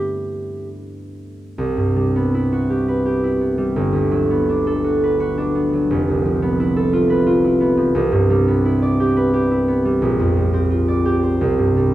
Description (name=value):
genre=classical, impressionist duo for clarinet and harp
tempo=70-89 BPM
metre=3/4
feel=rubato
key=unclear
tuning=A4 = 440 Hz
part: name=mellow clarinet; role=melody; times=0.0-0.7 s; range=G4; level=-26 LUFS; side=right 1 dB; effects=none
part: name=concert harp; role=accompaniment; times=0.0-11.9 s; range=F1 to D5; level=-16 LUFS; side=right 1 dB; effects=none
room=moderate recital hall reverb, RT60 1.6 s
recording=close, detailed microphones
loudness=-16 LUFS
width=side -14 dB against mid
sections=0.0-1.6 A section; 1.6-11.9 B section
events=none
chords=0.0 G69; 1.6 Cmaj7#11; 3.8 Gmaj9; 5.9 Fmaj7#11; 8.0 Cmaj9; 10.0 Bb69; 11.4 Csus2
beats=0.75 | 1.58 2.34 3.06 | 3.76 4.49 5.21 | 5.91 6.59 7.27 | 7.96 8.65 9.33 | 10.02 10.70 11.40